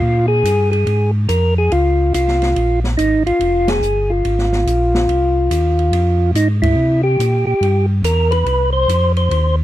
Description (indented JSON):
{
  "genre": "soul jazz organ trio",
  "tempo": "142 BPM",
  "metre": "4/4",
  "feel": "swing 65% on 8ths",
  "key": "F minor",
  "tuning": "A4 = 440 Hz",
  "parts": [
    { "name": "percussive tonewheel organ", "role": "melody", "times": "0.0-9.6 s", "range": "Eb4 to C5", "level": "-16 LUFS", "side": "equal", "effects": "slow rotary speaker" },
    { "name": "mellow tonewheel organ", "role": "bass", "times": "0.0-9.6 s", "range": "F1 to C3", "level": "-16 LUFS", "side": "equal", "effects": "slow rotary speaker" },
    { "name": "open jazz drum kit", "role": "drums", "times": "0.5-9.4 s", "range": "hi-hat, kick drum, ride cymbal, snare drum", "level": "-26 LUFS", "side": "equal", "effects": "none" }
  ],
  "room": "little or no reverb",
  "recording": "dry, close 1970s-style studio recording",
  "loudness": "-13 LUFS",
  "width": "side -14 dB against mid",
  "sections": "0.0-9.6 A section",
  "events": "band accent 3.6, 6.6",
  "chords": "0.0 Bbm7; 3.4 Fm7; 6.8 C7#9"
}